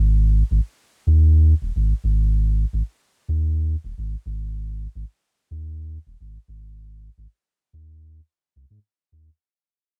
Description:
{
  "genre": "folktronica",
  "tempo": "108 BPM",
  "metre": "4/4",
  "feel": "straight",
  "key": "unclear",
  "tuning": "A4 = 444 Hz",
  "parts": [
    { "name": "warm sub bass", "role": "bass", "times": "0.0-9.3 s", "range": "Eb1 to Ab2", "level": "-21 LUFS", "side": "equal", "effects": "none" }
  ],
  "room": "little or no reverb",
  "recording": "home recording on cassette",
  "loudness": "-21 LUFS",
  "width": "mono",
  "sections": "0.0-9.4 A section",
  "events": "fade-out 0.0-9.4; filter sweep on sub bass 0.0-9.4",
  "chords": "none",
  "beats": "| 0.51 1.06 1.62 2.17 | 2.73 3.29 3.84 4.40 | 4.95 5.51 6.06 6.62 | 7.17 7.73 8.29 8.84"
}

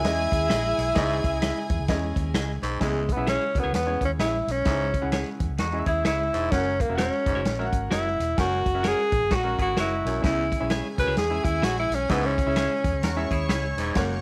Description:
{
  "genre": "uptempo 1960s-style soul",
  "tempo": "129 BPM",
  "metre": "4/4",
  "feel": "swing 60% on 8ths",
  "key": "C# dorian",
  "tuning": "A4 = 437 Hz",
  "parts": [
    { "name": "warm tenor saxophone", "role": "melody", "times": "0.0-13.4 s", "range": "G#3 to B4", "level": "-28 LUFS", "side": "equal", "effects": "none" },
    { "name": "clear studio violin section", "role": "second line", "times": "0.0-2.6, 10.2-14.2 s", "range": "G#4 to C#6", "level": "-37 LUFS", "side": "equal", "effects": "none" },
    { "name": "clear baby grand piano", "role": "accompaniment", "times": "0.0-14.2 s", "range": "C#3 to G#5", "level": "-35 LUFS", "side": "equal", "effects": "none" },
    { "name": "vintage muted fingered electric bass", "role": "bass", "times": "0.0-14.2 s", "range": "E1 to E2", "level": "-32 LUFS", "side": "equal", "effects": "none" },
    { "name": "vintage drum kit", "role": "drums", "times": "0.0-14.1 s", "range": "hi-hat, kick drum, snare drum", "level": "-31 LUFS", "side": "equal", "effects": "none" },
    { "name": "clean electric guitar", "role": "stabs", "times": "0.5-13.7 s", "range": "E4 to D#5", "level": "-35 LUFS", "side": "equal", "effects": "none" },
    { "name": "growling baritone saxophone", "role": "riff", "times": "1.0-14.2 s", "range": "E2 to G#2", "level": "-35 LUFS", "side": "equal", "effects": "none" },
    { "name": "semi-hollow electric guitar", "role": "riff", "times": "5.6-6.5, 9.3-10.2, 13.0-13.9 s", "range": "C#4 to A#4", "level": "-35 LUFS", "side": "equal", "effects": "subtle chorus" }
  ],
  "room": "little or no reverb",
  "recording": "none",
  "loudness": "-25 LUFS",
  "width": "mono",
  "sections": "0.0-2.8 A section; 2.8-14.2 B section",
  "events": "tenor saxophone solo 2.8-14.2",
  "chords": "0.0 C#madd9; 2.8 C#m",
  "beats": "0.05 0.51 | 0.97 1.43 1.89 2.35 | 2.81 3.27 3.74 4.20 | 4.66 5.13 5.59 6.05 | 6.52 6.99 7.45 7.92 | 8.38 8.85 9.31 9.78 | 10.24 10.71 11.17 11.64 | 12.10 12.57 13.03 13.50 | 13.96"
}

